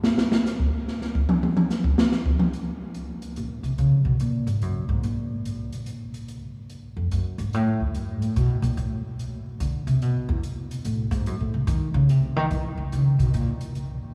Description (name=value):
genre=modal jazz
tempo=144 BPM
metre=3/4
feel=swing 66% on 8ths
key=unclear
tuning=A4 = 441 Hz
part: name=open jazz drum kit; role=drums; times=0.0-13.9 s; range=hi-hat, kick drum, snare drum, toms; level=-26 LUFS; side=equal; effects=none
part: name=upright bass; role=bass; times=3.4-13.5 s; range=D2 to E3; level=-25 LUFS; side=equal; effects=none
room=wet cathedral reverb, RT60 5.4 s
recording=recorded in a church or concert hall, small room ambience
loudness=-25 LUFS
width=mono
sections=0.0-2.5 A section; 2.5-12.5 A section; 12.5-14.1 A section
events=drum solo 0.0-2.5; upright bass solo 2.5-14.1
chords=none